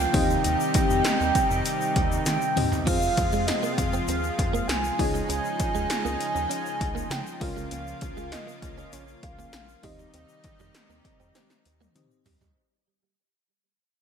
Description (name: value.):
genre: 1980s-style pop.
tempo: 99 BPM.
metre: 4/4.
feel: straight.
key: unclear.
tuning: A4 = 439 Hz.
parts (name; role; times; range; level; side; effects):
mellow horn-like synth lead; melody; 0.0-12.0 s; Db5 to Ab5; -29 LUFS; right 3 dB; chorus, phaser, digital delay.
FM electric piano with soft pad layer; accompaniment; 0.0-12.6 s; Db3 to F5; -32 LUFS; left 3 dB; chorus.
lush unison pad; sustained chords; 0.0-12.5 s; C3 to F4; -32 LUFS; equal; chorus.
rubbery square bass; bass; 0.0-12.5 s; Bb1 to Eb3; -32 LUFS; equal; none.
80s electronic pad drums; drums; 0.1-12.6 s; crash cymbal, hi-hat, kick drum, snare drum, tambourine, toms; -28 LUFS; equal; gated reverb on snare and toms.
egg shaker; percussion; 0.3-12.6 s; none; -42 LUFS; left 9 dB; none.
direct-recorded clean electric guitar; riff; 2.9-12.5 s; F3 to Db4; -36 LUFS; right 9 dB; ensemble chorus, digital delay.
room: moderate lush hall reverb, RT60 2.0 s, digital ambience.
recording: bright 1980s-style digital production.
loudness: -23 LUFS.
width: side -7 dB against mid.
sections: 0.0-12.6 A section.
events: fade-out 0.0-12.6; drum fill 2.3-2.9, 11.4-12.6.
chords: 0.1 Cm/Eb; 2.9 Fm; 5.0 Dbadd9; 7.4 Bbm; 9.8 Cm/Eb.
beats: | 0.45 1.05 1.66 2.26 | 2.87 3.48 4.08 4.69 | 5.29 5.90 6.51 7.11 | 7.72 8.32 8.93 9.54 | 10.14 10.75 11.35 11.96.